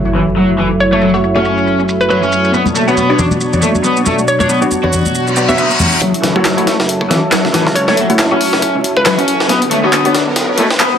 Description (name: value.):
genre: breakbeat, breaks.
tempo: 138 BPM.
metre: 4/4.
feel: swing 57% on 16ths.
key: F# minor.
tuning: A4 = 443 Hz.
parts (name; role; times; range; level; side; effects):
lush unison pad; sustained chords; 0.0-11.0 s; F#2 to C#5; -17 LUFS; right 1 dB; chorus, sidechain pumping.
impact, reverse cymbal and riser; sound effects; 0.0-0.8, 5.3-11.0 s; none; -21 LUFS; left 1 dB; none.
raw garage guitar; riff; 0.1-10.9 s; E3 to F#4; -15 LUFS; left 1 dB; overdrive, vintage 12-bit sampler grit, low-pass filter, digital delay.
electronic shaker and handclaps; drums; 0.1-10.9 s; none; -19 LUFS; equal; overdrive, low-pass filter on perc, studio reverb, low-pass filter on cymbals, low-pass filter on snare.
hollow square pluck; melody; 0.8-9.1 s; B4 to E5; -17 LUFS; equal; chorus, small speaker sound, digital delay.
orchestra-hit-like synth stab; stabs; 1.1-10.2 s; A3 to D5; -17 LUFS; left 1 dB; built-in reverb, cassette tape, digital delay.
congas; percussion; 2.7-5.9 s; none; -18 LUFS; left 1 dB; none.
fingered electric bass; bass; 6.0-11.0 s; F#1 to B2; -22 LUFS; equal; tube saturation, high-pass filter.
breakbeat sampler-style drum kit; drums; 6.0-10.9 s; hi-hat, kick drum, snare drum; -17 LUFS; equal; high-pass filter on kick, studio reverb, high-pass filter on hats, high-pass filter on snare.
room: wet small room reverb, RT60 0.5 s.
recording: dense, heavily limited modern master, vinyl crackle, high-pass filter.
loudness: -10 LUFS.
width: side -8 dB against mid.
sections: 0.0-6.0 A section; 6.0-11.0 B section.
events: impact 0.0-0.8; filter sweep on drum 0.0-6.0; filter sweep on overdriven electric guitar 0.0-6.0, 6.0-11.0; reverse cymbal 5.3-6.0; build-up 6.0-11.0; riser 6.0-11.0; drum fill 9.5-11.0.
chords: 0.0 F#m7; 2.5 Bmadd9; 6.0 F#m7; 9.5 Bmadd9.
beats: 0.37 | 0.80 1.24 1.67 2.10 | 2.54 2.97 3.41 3.84 | 4.28 4.71 5.15 5.58 | 6.02 6.45 6.89 7.32 | 7.76 8.19 8.63 9.06 | 9.50 9.93 10.37 10.80.